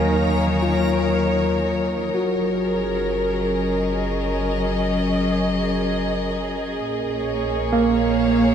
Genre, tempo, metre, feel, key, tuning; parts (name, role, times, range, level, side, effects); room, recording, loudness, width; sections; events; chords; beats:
ambient; free time; A4 = 440 Hz
dark studio string section; sustained chords; 0.0-8.5 s; Bb2 to F5; -21 LUFS; equal
barky tine electric piano; arpeggios; 0.0-8.5 s; Gb3 to Ab5; -23 LUFS; right 1 dB; wide subtle chorus, diffuse ambient delay
warm sub bass; bass; 0.0-8.5 s; Gb1 to Eb2; -28 LUFS; equal
backwards swelling texture; texture; 0.0-2.2 s; Bb4 to Bb5; -32 LUFS; left 1 dB; built-in reverb
wet scoring stage reverb, RT60 2.2 s; -19 LUFS; side -8 dB against mid
0.0-2.2 A section; 2.2-8.5 B section
0.0 Ebm11; 2.2 Gb69; 6.8 Bbm7
free time